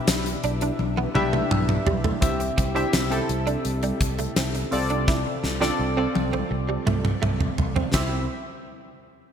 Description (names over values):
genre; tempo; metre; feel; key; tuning
1980s-style pop; 84 BPM; 4/4; straight; C major; A4 = 440 Hz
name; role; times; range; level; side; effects
warm analog keys; accompaniment; 0.0-8.3 s; C2 to E5; -26 LUFS; left 1 dB; chorus
direct-recorded clean electric guitar; riff; 0.1-8.2 s; G3 to E4; -31 LUFS; right 5 dB; ensemble chorus, ping-pong delay
fretless electric bass; bass; 0.1-8.3 s; B1 to C2; -28 LUFS; equal; none
gated 80s drum kit; drums; 0.1-8.1 s; hi-hat, kick drum, ride cymbal, snare drum, tambourine, toms; -25 LUFS; equal; none
room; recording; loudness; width
moderate lush hall reverb, RT60 2.6 s; bright 1980s-style digital production; -21 LUFS; side -8 dB against mid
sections
0.0-2.2 A section; 2.2-7.9 B section; 7.9-9.3 C section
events
drum fill 0.8-2.2, 5.1-7.9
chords
0.0 G6/B; 2.2 C; 4.7 F6/C; 7.9 C